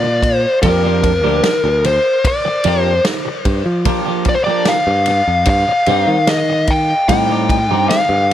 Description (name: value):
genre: psychedelic rock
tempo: 74 BPM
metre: 4/4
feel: straight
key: G minor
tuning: A4 = 442 Hz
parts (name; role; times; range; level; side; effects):
- fuzz lead guitar; melody; 0.0-8.3 s; Bb4 to G5; -15 LUFS; left 1 dB; distortion, tape echo
- twelve-string electric guitar; riff; 0.0-8.1 s; F3 to G4; -18 LUFS; right 1 dB; phaser, double-tracked left and right
- modern bright picked electric bass; bass; 0.0-8.3 s; D2 to F3; -18 LUFS; equal; none
- vintage drum kit; drums; 0.2-8.3 s; kick drum, ride cymbal, snare drum; -20 LUFS; equal; none
room: light reverb, studio reverb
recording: none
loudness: -12 LUFS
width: side -11 dB against mid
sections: 0.0-8.3 A section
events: none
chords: 0.0 Gm7; 5.5 Cm/G